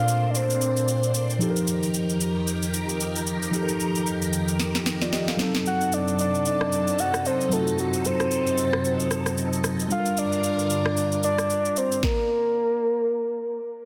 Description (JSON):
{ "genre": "amapiano", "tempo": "113 BPM", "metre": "4/4", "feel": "swing 58% on 16ths", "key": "unclear", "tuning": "A4 = 441 Hz", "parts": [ { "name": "soft octave-layered synth lead", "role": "melody", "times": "0.0-1.2, 5.7-13.6 s", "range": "F#4 to F#5", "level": "-27 LUFS", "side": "equal", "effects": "chorus, digital delay" }, { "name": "mellow tine electric piano", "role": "accompaniment", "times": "0.0-12.0 s", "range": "Bb2 to F5", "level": "-29 LUFS", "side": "equal", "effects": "none" }, { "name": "phased string machine", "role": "sustained chords", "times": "0.0-12.0 s", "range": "F2 to C5", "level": "-32 LUFS", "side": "equal", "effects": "ensemble chorus, phaser, sidechain pumping" }, { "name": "afro-pop drum kit", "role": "drums", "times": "0.1-12.2 s", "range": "kick drum, rim click, shaker, snare drum", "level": "-32 LUFS", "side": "equal", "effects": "none" } ], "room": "light reverb, digital ambience", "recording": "dense, heavily limited modern master", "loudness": "-24 LUFS", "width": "mono", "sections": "0.0-13.9 A section", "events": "drum fill 4.6-5.7", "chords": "0.0 Bbmaj9; 1.4 F9sus4; 5.4 D7b9/F#; 9.9 Gm7", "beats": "0.35 0.88 | 1.41 1.94 2.47 3.00 | 3.53 4.07 4.60 5.13 | 5.66 6.19 6.72 7.25 | 7.78 8.31 8.84 9.38 | 9.91 10.44 10.97 11.50 | 12.03 12.56 13.09" }